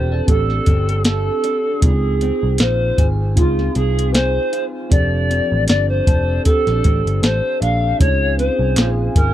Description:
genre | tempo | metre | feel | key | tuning
indie pop, bedroom pop | 78 BPM | 4/4 | swing 55% on 16ths | unclear | A4 = 435 Hz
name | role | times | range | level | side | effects
bright reedy polished pan flute | melody | 0.0-9.3 s | F4 to F5 | -20 LUFS | equal | wide subtle chorus, tape echo
electric guitar through a small old amp | accompaniment | 0.0-9.3 s | F3 to A4 | -28 LUFS | left 3 dB | lush chorus, warbly pitch drift
mellow tine electric piano | accompaniment | 0.0-9.3 s | C4 to A4 | -26 LUFS | right 4 dB | slow stereo tremolo, cassette tape
vintage muted picked electric bass | bass | 0.0-9.3 s | E1 to Db2 | -18 LUFS | equal | none
soft vintage rhythm box | drums | 0.3-9.3 s | hi-hat, kick drum, snare drum | -16 LUFS | equal | none
hollow soft pad | sustained chords | 8.0-9.3 s | Ab4 to Ab5 | -29 LUFS | right 2 dB | chorus
group handclap | percussion | 8.8-9.0 s | none | -32 LUFS | right 4 dB | none
room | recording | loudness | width
little or no reverb | dry, close 1970s-style studio recording | -14 LUFS | side -12 dB against mid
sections
0.0-9.3 A section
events
none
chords
0.0 F6; 1.8 Dbmaj7; 4.9 F6; 8.0 Dbmaj7

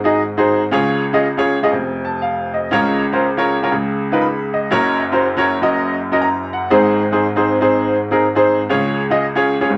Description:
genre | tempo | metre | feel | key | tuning
gospel | 120 BPM | 4/4 | swing 65% on 8ths | Db major | A4 = 440 Hz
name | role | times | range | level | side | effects
clear baby grand piano | solo | 0.0-9.8 s | F1 to Cb6 | -17 LUFS | equal | none
room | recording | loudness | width
moderate studio reverb, RT60 0.8 s | none | -17 LUFS | mono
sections
0.7-9.8 A section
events
none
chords
0.0 Ab7; 0.7 Db; 1.7 N.C.; 2.7 Bbm/Db; 3.7 Db13; 4.7 Gb; 6.7 Ab; 8.7 Db

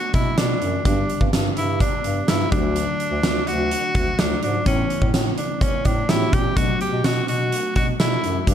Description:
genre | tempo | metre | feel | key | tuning
1980s-style pop | 126 BPM | 4/4 | straight | unclear | A4 = 440 Hz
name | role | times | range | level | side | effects
clear tenor saxophone | melody | 0.0-8.5 s | C#4 to G4 | -24 LUFS | equal | tape echo
FM electric piano with soft pad layer | accompaniment | 0.0-8.5 s | D3 to G4 | -27 LUFS | left 1 dB | chorus
mellow bass clarinet | bass | 0.1-8.5 s | D2 to B2 | -25 LUFS | equal | none
huge arena drum kit | drums | 0.1-8.5 s | hi-hat, kick drum, snare drum, tambourine | -21 LUFS | equal | none
room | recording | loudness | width
light reverb | dark, warm production | -18 LUFS | side -9 dB against mid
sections
0.0-8.5 A section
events
none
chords
0.0 Bm7; 0.9 G; 2.5 D; 4.7 Aadd9; 6.6 Bm7

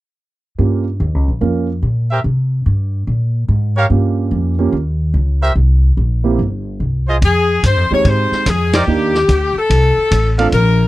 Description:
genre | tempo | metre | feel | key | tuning
jazz, big band swing | 145 BPM | 4/4 | swing 66% on 8ths | F minor | A4 = 440 Hz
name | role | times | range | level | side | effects
dark grand piano | accompaniment | 0.6-10.5 s | Ab3 to Bb4 | -18 LUFS | right 6 dB | none
upright bass | bass | 0.6-10.9 s | G1 to C3 | -14 LUFS | equal | none
warm trumpet section | stabs | 2.1-10.5 s | Eb4 to F5 | -16 LUFS | right 2 dB | none
vintage drum kit | drums | 7.2-10.6 s | hi-hat, kick drum, ride cymbal, snare drum | -22 LUFS | equal | none
edgy saxophone section | melody | 7.3-10.9 s | G4 to Db5 | -15 LUFS | left 3 dB | none
room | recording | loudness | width
little or no reverb | dry, close 1970s-style studio recording | -13 LUFS | side -17 dB against mid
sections
0.6-7.2 A section; 7.2-10.9 B section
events
band accent 8.7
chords
0.6 Gm7b5; 2.2 C5; 3.9 Gm7b5; 5.6 C7(no3); 7.2 Fm7; 8.9 Ebmaj7; 9.7 F

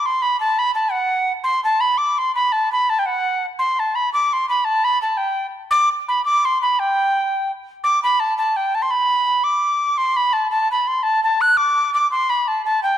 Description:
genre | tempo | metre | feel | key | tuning
celtic folk | 113 BPM (dotted quarters) | 6/8 | straight | unclear | A4 = 440 Hz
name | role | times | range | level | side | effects
reedy mid whistle | solo | 0.0-13.0 s | F#5 to F#6 | -16 LUFS | equal | none
room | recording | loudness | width
moderate recital hall reverb, RT60 1.8 s | dark, warm production | -16 LUFS | side -10 dB against mid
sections
0.0-7.8 A section; 7.8-13.0 B section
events
none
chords
none

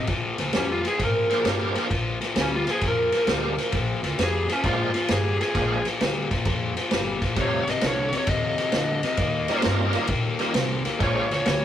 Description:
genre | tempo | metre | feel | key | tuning
electric blues shuffle | 132 BPM | 4/4 | swing 67% on 8ths | Bb mixolydian | A4 = 439 Hz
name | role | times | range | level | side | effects
biting overdriven guitar | riff | 0.0-11.6 s | F2 to C4 | -27 LUFS | left 3 dB | none
upright bass | bass | 0.1-11.6 s | F1 to Bb2 | -31 LUFS | right 1 dB | none
vintage drum kit | drums | 0.1-11.6 s | kick drum, ride cymbal, snare drum | -26 LUFS | equal | none
biting lead guitar | melody | 0.6-11.6 s | Db4 to Eb5 | -26 LUFS | equal | overdrive, digital delay
bright tonewheel organ | accompaniment | 1.3-11.3 s | G3 to Ab4 | -27 LUFS | right 2 dB | slow rotary speaker, overdrive, chorus vibrato
room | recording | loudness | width
moderate booth ambience, RT60 0.2 s | rough rehearsal-room recording | -21 LUFS | side -10 dB against mid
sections
0.1-11.6 A section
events
lead electric guitar solo 0.1-11.6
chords
0.1 Bb7; 7.4 F7; 9.2 Eb7; 11.0 Bb7

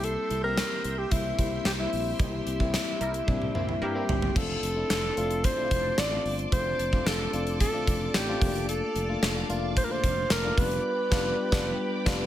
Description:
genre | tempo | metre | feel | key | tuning
1980s-style pop | 111 BPM | 4/4 | straight | unclear | A4 = 439 Hz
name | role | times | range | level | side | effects
breathy alto saxophone | melody | 0.0-12.3 s | E4 to D5 | -30 LUFS | equal | tape echo
FM electric piano | accompaniment | 0.0-12.3 s | G3 to G4 | -33 LUFS | left 3 dB | chorus
string machine, full ensemble | sustained chords | 0.0-12.3 s | G4 to D6 | -37 LUFS | right 1 dB | ensemble chorus
sustaining fretless electric bass | bass | 0.0-12.2 s | F1 to G2 | -33 LUFS | equal | none
gated 80s drum kit | drums | 0.0-12.2 s | crash cymbal, hi-hat, kick drum, snare drum, toms | -28 LUFS | equal | gated reverb
funky polysynth comp | stabs | 3.0-4.0 s | G3 to Bb4 | -38 LUFS | equal | chorus, tape echo
room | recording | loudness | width
light reverb, small room ambience | none | -25 LUFS | side -12 dB against mid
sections
0.0-4.4 A section; 4.4-12.3 B section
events
band accent 2.2-4.4, 10.8-12.3; drum fill 3.3-4.4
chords
0.0 C7; 4.4 Dm7/F; 8.4 Bbmaj7/F; 10.6 G7/F

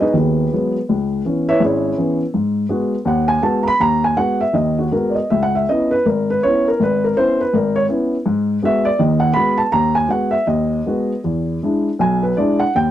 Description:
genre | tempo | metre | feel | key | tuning
solo jazz | 162 BPM | 4/4 | swing 63% on 8ths, rubato | G# minor | A4 = 439 Hz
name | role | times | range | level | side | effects
dark upright piano | solo | 0.0-12.9 s | G#1 to B5 | -15 LUFS | equal | none
room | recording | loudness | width
light reverb | dry, close 1970s-style studio recording | -15 LUFS | side -12 dB against mid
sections
0.0-12.9 A section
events
upright piano solo 0.0-12.9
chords
0.0 G#m7; 0.9 C#m7; 2.3 G#m7; 5.3 C#m7; 8.3 G#m7; 11.2 E7

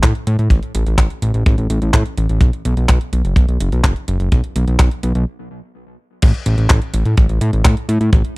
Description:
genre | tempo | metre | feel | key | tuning
italo disco | 126 BPM | 4/4 | straight | unclear | A4 = 438 Hz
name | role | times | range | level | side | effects
fat analog bass | bass | 0.0-8.2 s | F#1 to A2 | -16 LUFS | equal | tube saturation
clean 12-bit digital drum machine | drums | 0.0-8.3 s | crash cymbal, handclaps, hi-hat | -22 LUFS | equal | small room ambience
kick drum | drums | 0.0-8.2 s | none | -13 LUFS | equal | small room ambience
room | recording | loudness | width
little or no reverb | dry, close 1970s-style studio recording | -13 LUFS | side -24 dB against mid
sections
0.0-6.2 A section; 6.2-8.4 B section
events
stop 5.3-6.2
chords
none

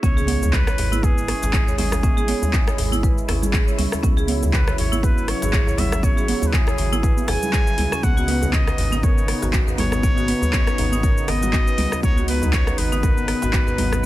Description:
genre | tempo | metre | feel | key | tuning
afro house | 120 BPM | 4/4 | swing 56% on 16ths | C# minor | A4 = 441 Hz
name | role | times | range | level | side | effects
trumpet with straight mute | melody | 0.0-14.1 s | G#4 to G#5 | -28 LUFS | equal | dub echo
warm analog pad | sustained chords | 0.0-14.1 s | C#3 to E4 | -30 LUFS | left 1 dB | chorus, tremolo, sidechain pumping
marimba with hard mallets | arpeggios | 0.0-14.1 s | B3 to C#5 | -28 LUFS | equal | sidechain pumping
round analog bass | bass | 0.0-14.1 s | G#1 to C#2 | -24 LUFS | equal | sidechain pumping
afro-pop drum kit | drums | 0.0-14.1 s | handclaps, hi-hat, rim click, shaker | -27 LUFS | left 1 dB | small room ambience
electronic kick drum | drums | 0.0-13.6 s | none | -19 LUFS | equal | small room ambience
congas | percussion | 0.0-14.1 s | none | -28 LUFS | right 4 dB | none
impact | sound effects | 0.0-2.0 s | none | -32 LUFS | equal | none
djembe | percussion | 0.4-14.0 s | none | -28 LUFS | equal | none
room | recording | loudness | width
small room ambience | none | -17 LUFS | side -15 dB against mid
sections
0.0-14.1 A section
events
drop 0.0-14.1; impact 0.0-2.0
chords
0.0 C#m; 8.0 Badd9

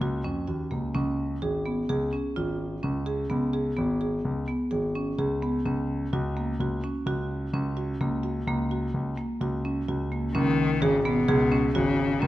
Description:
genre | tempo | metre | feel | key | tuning
contemporary instrumental, chamber music in an uneven meter | 128 BPM | 5/4 | straight | Db mixolydian | A4 = 440 Hz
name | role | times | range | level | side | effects
marimba with medium mallets | arpeggios | 0.0-12.3 s | Bb3 to Ab4 | -28 LUFS | right 1 dB | none
warm concert grand piano | bass | 0.0-12.3 s | Ab1 to F2 | -29 LUFS | left 1 dB | none
rich cello | second line | 10.3-12.3 s | Cb3 to Eb3 | -26 LUFS | left 3 dB | none
room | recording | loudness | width
light reverb | close, detailed microphones | -25 LUFS | side -15 dB against mid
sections
0.0-10.3 A section; 10.3-12.3 B section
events
none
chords
0.0 Gb/Db; 1.0 Db7(no3); 5.7 Gb/Db; 10.3 Db7sus4

